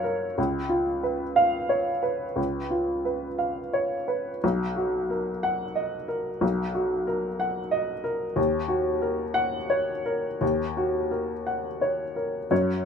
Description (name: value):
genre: neoclassical minimalist piano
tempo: 57-62 BPM (dotted quarters)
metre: 6/8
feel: rubato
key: Eb minor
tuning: A4 = 440 Hz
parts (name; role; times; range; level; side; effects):
- clear upright piano; solo; 0.0-12.8 s; B1 to F#5; -24 LUFS; equal; none
room: moderate studio reverb, RT60 0.6 s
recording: minimal, uncompressed stereo recording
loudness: -24 LUFS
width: side -6 dB against mid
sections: 0.0-12.5 A section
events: none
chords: 0.4 Db7; 4.4 Bmaj7; 8.4 Ebm7